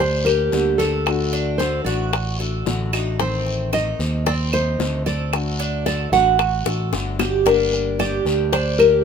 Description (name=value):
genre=latin, Cuban son and guajira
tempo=112 BPM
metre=4/4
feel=straight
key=G harmonic minor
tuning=A4 = 438 Hz
part: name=nylon-string guitar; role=melody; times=0.0-9.0 s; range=A4 to F#5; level=-20 LUFS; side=left 1 dB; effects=none
part: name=fingerpicked acoustic archtop guitar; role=accompaniment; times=0.0-9.0 s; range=D3 to G4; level=-28 LUFS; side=left 7 dB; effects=none
part: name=Cuban tres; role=arpeggios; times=0.0-9.0 s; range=C4 to A4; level=-26 LUFS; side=right 7 dB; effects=none
part: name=picked electric bass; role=bass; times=0.0-9.0 s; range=G1 to Eb2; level=-24 LUFS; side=right 1 dB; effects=none
part: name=bongos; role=percussion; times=0.0-8.8 s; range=none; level=-26 LUFS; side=left 7 dB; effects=none
part: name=claves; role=percussion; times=0.3-9.0 s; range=none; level=-27 LUFS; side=right 6 dB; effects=none
part: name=guiro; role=percussion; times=0.5-9.0 s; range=none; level=-32 LUFS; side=left 3 dB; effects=none
room=light reverb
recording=minimal, uncompressed stereo recording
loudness=-18 LUFS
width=side -7 dB against mid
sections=0.0-9.0 A section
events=drum fill 6.7-7.5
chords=0.0 Gm; 1.1 D; 3.2 Adim; 5.3 D; 7.5 Gm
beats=0.00 0.53 | 1.06 1.60 2.13 2.66 | 3.20 3.73 4.26 4.80 | 5.33 5.86 6.40 6.93 | 7.46 8.00 8.53